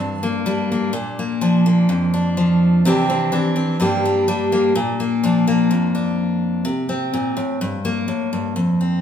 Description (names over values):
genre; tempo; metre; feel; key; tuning
highlife; 126 BPM; 4/4; straight; unclear; A4 = 440 Hz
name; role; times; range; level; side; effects
picked steel-string acoustic guitar; solo; 0.0-9.0 s; F2 to G4; -16 LUFS; left 1 dB; none
room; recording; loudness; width
wet large studio reverb, RT60 1.3 s; band playing live in one room; -16 LUFS; side -8 dB against mid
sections
0.0-8.6 A section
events
none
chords
0.0 Gm; 0.9 Bb; 2.8 Cadd9; 3.8 Gm; 4.7 Bb; 6.6 Am; 7.6 Gm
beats
0.45 | 0.93 1.40 1.88 2.36 | 2.83 3.31 3.78 4.26 | 4.74 5.21 5.69 6.17 | 6.64 7.12 7.60 8.07 | 8.55